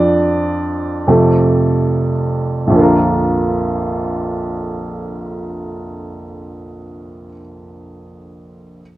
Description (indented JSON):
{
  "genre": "pop",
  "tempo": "34-41 BPM (dotted quarters)",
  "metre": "6/8",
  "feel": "straight",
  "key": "Bb major",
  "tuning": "A4 = 442 Hz",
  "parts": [
    { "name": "warm upright piano", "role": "accompaniment", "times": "0.0-8.8 s", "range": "Bb1 to D5", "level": "-15 LUFS", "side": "right 1 dB", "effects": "none" }
  ],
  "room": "light reverb",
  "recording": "worn, warbling old tape, cassette tape, warbly pitch drift",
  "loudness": "-14 LUFS",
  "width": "side -15 dB against mid",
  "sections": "0.0-2.7 A section; 2.7-6.3 B section",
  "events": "slowing down 0.0-2.7; upright piano solo 0.0-2.7",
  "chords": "0.0 Dm/F; 1.1 F; 2.7 Bb"
}